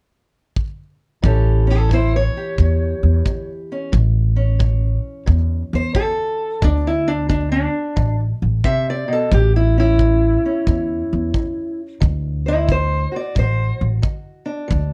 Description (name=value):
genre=acoustic country blues, solo or duo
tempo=89 BPM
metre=4/4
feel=swing 65% on 8ths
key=A mixolydian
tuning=A4 = 441 Hz
part: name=kick drum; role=drums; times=0.6-14.9 s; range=none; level=-24 LUFS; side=equal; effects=none
part: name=fingerpicked steel-string acoustic guitar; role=melody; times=1.2-14.9 s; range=A2 to E5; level=-23 LUFS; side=equal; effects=none
part: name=upright bass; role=bass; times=1.2-14.9 s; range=A1 to E2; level=-19 LUFS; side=equal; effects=none
room=little or no reverb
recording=dark, warm production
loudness=-18 LUFS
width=mono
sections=0.0-1.2 A section; 1.2-14.9 B section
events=steel-string acoustic guitar solo 1.2-14.9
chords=0.0 N.C.; 1.2 A7; 6.6 D5; 9.3 A; 12.0 D7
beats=0.56 | 1.24 1.91 2.59 3.26 | 3.93 4.61 5.28 5.96 | 6.63 7.30 7.98 8.65 | 9.32 10.00 10.67 11.34 | 12.02 12.69 13.36 14.04 | 14.71